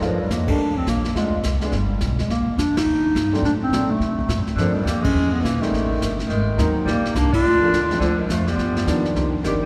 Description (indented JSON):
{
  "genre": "jazz, small-group swing and bop",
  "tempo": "210 BPM",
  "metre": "4/4",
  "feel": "swing 62% on 8ths",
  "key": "G minor",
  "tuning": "A4 = 440 Hz",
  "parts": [
    { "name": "breathy clarinet", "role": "melody", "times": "0.0-9.5 s", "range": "F3 to G4", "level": "-24 LUFS", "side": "equal", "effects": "none" },
    { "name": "warm concert grand piano", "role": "accompaniment", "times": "0.0-9.6 s", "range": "Eb3 to Ab4", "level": "-29 LUFS", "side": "equal", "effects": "none" },
    { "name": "upright bass", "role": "bass", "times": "0.0-9.7 s", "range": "F1 to C3", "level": "-26 LUFS", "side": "equal", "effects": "none" },
    { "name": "vintage brush drum kit", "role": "drums", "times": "0.0-9.7 s", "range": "brushed snare drum, hi-hat, kick drum, ride cymbal, snare drum", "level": "-32 LUFS", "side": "equal", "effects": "none" },
    { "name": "clear tenor saxophone", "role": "second line", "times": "4.6-9.7 s", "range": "D3 to D4", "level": "-30 LUFS", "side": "equal", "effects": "none" }
  ],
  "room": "wet cathedral reverb, RT60 5.3 s",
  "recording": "recorded in a church or concert hall",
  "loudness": "-21 LUFS",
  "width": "mono",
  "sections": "0.0-9.2 A section",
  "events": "band accent 0.4, 2.7, 5.0, 7.3",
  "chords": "0.0 Gm9; 1.2 Dm7b5; 1.7 G7; 2.3 Cm7; 3.4 D7; 4.6 Gm9; 5.2 E5; 5.7 Am7b5; 6.3 Ab9; 6.9 Gm7; 8.0 Dm; 8.6 G7b13"
}